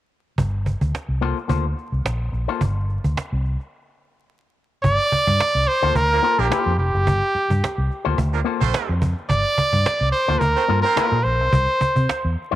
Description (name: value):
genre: funk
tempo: 108 BPM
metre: 4/4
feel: swing 56% on 16ths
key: G minor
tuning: A4 = 440 Hz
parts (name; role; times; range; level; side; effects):
- vintage muted fingered electric bass; bass; 0.4-12.6 s; F1 to C3; -22 LUFS; equal; none
- cajon; drums; 0.4-12.6 s; none; -24 LUFS; right 2 dB; none
- electric guitar with an envelope filter; accompaniment; 1.2-12.6 s; Bb3 to C5; -26 LUFS; left 9 dB; none
- bright trumpet; melody; 4.8-12.4 s; G4 to D5; -20 LUFS; right 1 dB; none
- warm horn section; second line; 6.1-11.2 s; F3 to C5; -28 LUFS; right 9 dB; none
room: moderate spring reverb, RT60 2.6 s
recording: 1960s-style stereo with parts hard left and right, vinyl crackle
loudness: -18 LUFS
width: side -14 dB against mid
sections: 0.4-4.8 A section; 4.8-12.6 B section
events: break 3.7-4.8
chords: 0.4 Gm11; 11.5 C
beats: | 0.38 0.94 1.49 2.05 | 2.61 3.17 3.73 4.28 | 4.84 5.40 5.96 6.51 | 7.07 7.62 8.18 8.74 | 9.30 9.85 10.41 10.97 | 11.53 12.08